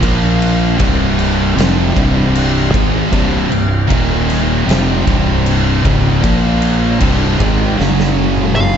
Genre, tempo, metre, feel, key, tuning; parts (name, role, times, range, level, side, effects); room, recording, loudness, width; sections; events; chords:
stoner and doom metal; 77 BPM; 4/4; straight; C minor; A4 = 439 Hz
tonewheel organ; sustained chords; 0.0-8.8 s; F#3 to F5; -28 LUFS; equal
heavy high-gain guitar; riff; 0.0-8.8 s; C2 to Bb3; -19 LUFS; right 1 dB; distortion
thick fuzz guitar; riff; 0.0-8.8 s; C2 to Bb3; -18 LUFS; left 8 dB; distortion
thick fuzz guitar; riff; 0.0-8.8 s; C2 to Bb3; -18 LUFS; right 10 dB; distortion
fuzz fingered electric bass; bass; 0.0-8.8 s; C1 to Bb1; -18 LUFS; equal; overdrive
oversized low-tuned drum kit; drums; 0.0-8.7 s; crash cymbal, kick drum, snare drum, toms; -17 LUFS; equal
fuzz lead guitar; melody; 8.6-8.8 s; F5; -16 LUFS; left 1 dB; distortion
small room reverb; dark, warm production, nothing above 7.9 kHz; -11 LUFS; side -8 dB against mid
0.0-8.8 A section
drum fill 7.8-8.8
0.0 Bb5; 0.8 Cm; 3.9 Eb5; 4.7 C5; 6.2 Bb5; 7.0 Cm; 7.8 F#5